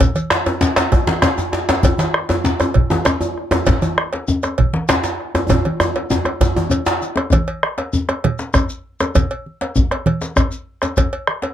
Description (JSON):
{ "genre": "west african traditional, West African drum ensemble", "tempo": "131 BPM (dotted quarters)", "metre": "12/8", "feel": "straight", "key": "none", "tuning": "none", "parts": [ { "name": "bombo", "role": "percussion", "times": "0.0-11.4 s", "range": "none", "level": "-18 LUFS", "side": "equal", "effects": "none" }, { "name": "congas", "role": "percussion", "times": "0.0-11.4 s", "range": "none", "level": "-21 LUFS", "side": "right 3 dB", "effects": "none" }, { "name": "cowbell", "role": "percussion", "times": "0.0-11.5 s", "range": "none", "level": "-23 LUFS", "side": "right 2 dB", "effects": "none" }, { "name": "djembe", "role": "percussion", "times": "0.0-11.5 s", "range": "none", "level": "-21 LUFS", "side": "left 3 dB", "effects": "none" }, { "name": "shekere", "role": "percussion", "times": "0.0-11.1 s", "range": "none", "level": "-27 LUFS", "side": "left 3 dB", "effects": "none" }, { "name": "djembe", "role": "percussion", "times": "0.3-7.0 s", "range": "none", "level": "-19 LUFS", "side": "equal", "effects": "none" } ], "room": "light reverb", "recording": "close, detailed microphones", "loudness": "-16 LUFS", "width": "side -10 dB against mid", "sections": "0.0-7.3 A section; 7.3-11.5 B section", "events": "drum fill 5.5-7.3", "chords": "none" }